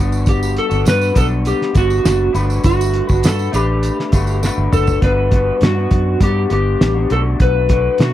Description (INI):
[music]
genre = indie pop, bedroom pop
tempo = 101 BPM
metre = 4/4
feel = straight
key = G major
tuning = A4 = 441 Hz
[part]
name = electric guitar through a small old amp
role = accompaniment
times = 0.0-8.1 s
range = B2 to B4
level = -22 LUFS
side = left 2 dB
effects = analog chorus, vibrato effect
[part]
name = vintage muted fingered electric bass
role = bass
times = 0.0-8.1 s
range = F#1 to B2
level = -17 LUFS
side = equal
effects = none
[part]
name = tambourine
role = percussion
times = 0.1-5.0 s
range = none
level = -32 LUFS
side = right 8 dB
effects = none
[part]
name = electric slide guitar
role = melody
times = 0.3-8.1 s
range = F#4 to B4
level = -18 LUFS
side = left 1 dB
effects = wide subtle chorus, tape echo
[part]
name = cloth-damped thuddy drum kit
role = drums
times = 0.3-8.1 s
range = hi-hat, kick drum, snare drum, toms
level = -16 LUFS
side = equal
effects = none
[sound]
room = little or no reverb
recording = dry, close 1970s-style studio recording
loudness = -13 LUFS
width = side -13 dB against mid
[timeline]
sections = 0.0-5.0 A section; 5.0-8.1 B section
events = drum fill 4.4-5.0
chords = 0.0 Gmaj7; 2.4 Gmaj9; 5.0 Gmaj7; 7.1 Bm7